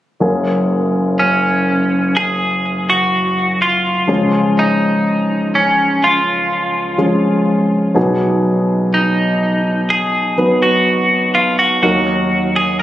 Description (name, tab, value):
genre	pop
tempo	62 BPM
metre	4/4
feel	straight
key	F# major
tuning	A4 = 441 Hz
part	warm concert grand piano	accompaniment	0.2-12.8 s	F#1 to B4	-15 LUFS	equal	none
part	twelve-string electric guitar	melody	1.2-12.8 s	C#4 to A#4	-15 LUFS	equal	ping-pong delay
room	moderate lush hall reverb, RT60 3.1 s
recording	recorded on a phone in the room, club reverb, compression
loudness	-12 LUFS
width	side -13 dB against mid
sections	0.2-12.8 A section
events	none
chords	0.2 F#add9; 4.1 C#; 8.0 G#m7/B; 11.8 D#m